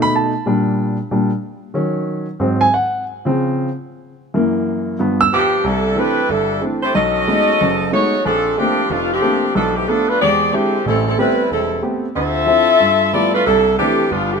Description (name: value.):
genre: jazz.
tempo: 184 BPM.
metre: 4/4.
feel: swing 64% on 8ths.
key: C major from 5.6 s.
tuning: A4 = 438 Hz.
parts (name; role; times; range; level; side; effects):
warm baby grand piano; accompaniment; 0.0-14.4 s; E1 to E6; -18 LUFS; equal; none.
mellow saxophone section; melody; 5.3-14.4 s; D3 to E5; -15 LUFS; left 1 dB; none.
room: moderate echo chamber reverb, RT60 2.2 s.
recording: minimal, uncompressed stereo recording.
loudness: -14 LUFS.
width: side -5 dB against mid.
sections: 0.0-5.6 A section; 5.6-14.4 B section.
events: grand piano solo 0.0-5.6.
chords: 0.4 Bb6; 1.7 Ebm7; 2.4 Ab7; 3.0 Dbmaj7; 4.3 Gb7; 5.0 G7; 5.6 C69; 6.9 B13; 8.2 Bbmaj9; 9.5 Bm7b5; 10.2 E7alt; 10.8 Am9; 12.2 Dm9; 12.8 G13; 13.5 C69.